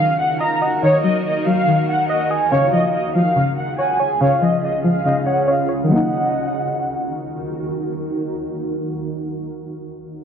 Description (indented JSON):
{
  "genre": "hip hop",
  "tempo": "142 BPM",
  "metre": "4/4",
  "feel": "half-time",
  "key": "Eb minor",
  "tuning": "A4 = 440 Hz",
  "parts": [
    { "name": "rich studio violin section", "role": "melody", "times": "0.0-7.1 s", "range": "Db5 to Bb5", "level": "-20 LUFS", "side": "equal", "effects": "low-pass filter, digital delay" },
    { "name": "string-like resonator pluck", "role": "accompaniment", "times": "0.0-9.6 s", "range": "Db3 to Eb5", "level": "-20 LUFS", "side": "left 2 dB", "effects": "chorus, low-pass filter" },
    { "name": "granular cloud pad", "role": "sustained chords", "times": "0.0-9.5 s", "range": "Db3 to Bb4", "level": "-24 LUFS", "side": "right 2 dB", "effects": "built-in reverb, low-pass filter" },
    { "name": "soft octave-layered synth lead", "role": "second line", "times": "0.4-7.1 s", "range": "Db5 to Ab5", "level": "-24 LUFS", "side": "right 1 dB", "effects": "chorus, phaser, digital delay" }
  ],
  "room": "moderate digital room reverb, RT60 1.1 s, digital ambience",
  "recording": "none",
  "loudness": "-16 LUFS",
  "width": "side -7 dB against mid",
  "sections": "0.0-5.9 A section; 5.9-9.3 B section",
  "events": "filter sweep 0.0-5.9",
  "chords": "0.0 Ebm; 2.5 Db; 5.9 Ebm",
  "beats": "0.40 | 0.83 1.25 1.67 2.09 | 2.52 2.94 3.36 3.78 | 4.21 4.63 5.05 5.47 | 5.90 6.32 6.74 7.16 | 7.59 8.01 8.43 8.86"
}